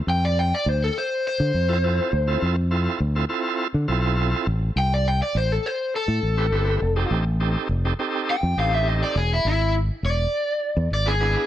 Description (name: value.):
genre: straight-eighth soul blues.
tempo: 102 BPM.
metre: 4/4.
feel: straight.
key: unclear.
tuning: A4 = 440 Hz.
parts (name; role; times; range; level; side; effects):
overdriven semi-hollow guitar; melody; 0.1-11.5 s; E4 to G5; -24 LUFS; left 1 dB; slapback echo.
fingered electric bass; bass; 0.1-11.4 s; E1 to D3; -22 LUFS; equal; none.
bright tonewheel organ; accompaniment; 1.7-11.5 s; B3 to B4; -27 LUFS; right 4 dB; slow rotary speaker, overdrive.
room: little or no reverb.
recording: none.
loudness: -20 LUFS.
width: side -12 dB against mid.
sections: 0.0-11.5 A section.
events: overdriven electric guitar solo 0.0-11.5.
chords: 0.0 Dm7; 4.5 Am7; 6.8 F7; 9.2 E7.